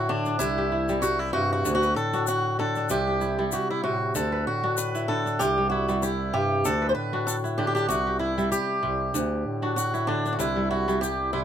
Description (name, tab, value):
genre	west african traditional, West African string and xylophone music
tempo	96 BPM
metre	4/4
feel	swing 55% on 16ths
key	unclear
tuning	A4 = 443 Hz
part	picked swing-style acoustic guitar	melody	0.0-11.4 s	D4 to C5	-26 LUFS	equal	none
part	kora	arpeggios	0.0-11.4 s	C3 to B4	-28 LUFS	right 1 dB	none
part	warm bass clarinet	bass	0.0-11.4 s	C2 to A2	-30 LUFS	left 1 dB	none
part	egg shaker	percussion	0.3-11.2 s	none	-35 LUFS	left 7 dB	none
room	light reverb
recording	minimal, uncompressed stereo recording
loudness	-23 LUFS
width	side -9 dB against mid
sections	0.0-11.4 A section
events	none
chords	0.4 C; 1.6 D; 2.9 C; 4.1 D; 5.4 C; 6.6 D; 7.9 C; 9.1 D; 10.4 C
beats	0.40 1.02 | 1.65 2.27 2.90 3.52 | 4.15 4.77 5.39 6.02 | 6.64 7.27 7.89 8.52 | 9.14 9.77 10.39 11.02